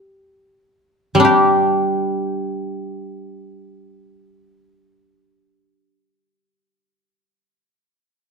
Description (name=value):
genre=chinese traditional, Chinese solo plucked strings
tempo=free time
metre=none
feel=none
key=unclear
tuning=A4 = 437 Hz
part: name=guzheng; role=solo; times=0.0-7.2 s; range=G3 to G4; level=-16 LUFS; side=equal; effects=slapback echo
room=light reverb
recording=close, detailed microphones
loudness=-15 LUFS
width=side -5 dB against mid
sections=0.0-1.3 A section; 1.3-6.0 B section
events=none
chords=none